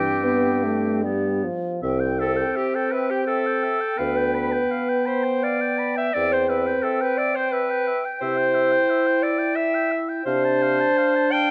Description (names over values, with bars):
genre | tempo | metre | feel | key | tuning
classical, slow romantic movement for wind quintet | 85 BPM | 3/4 | uneven beats, rubato | C major | A4 = 439 Hz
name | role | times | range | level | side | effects
mellow concert flute | melody | 0.0-11.5 s | G5 to A5 | -34 LUFS | equal | none
warm oboe | second line | 0.0-11.5 s | G4 to B5 | -32 LUFS | equal | none
bright clarinet | accompaniment | 0.0-11.5 s | B3 to G5 | -25 LUFS | equal | none
warm French horn | accompaniment | 0.0-11.5 s | E3 to E4 | -28 LUFS | equal | none
mellow bassoon | bass | 0.0-10.9 s | C2 to C3 | -28 LUFS | equal | none
room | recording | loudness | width
moderate recital hall reverb, RT60 1.6 s | close, detailed microphones | -22 LUFS | mono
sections
0.0-1.8 A section; 1.8-11.5 B section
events
none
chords
0.0 C/G; 1.0 G; 1.8 C; 4.0 G7/D; 6.1 C/E; 8.2 C; 10.3 Dm7/C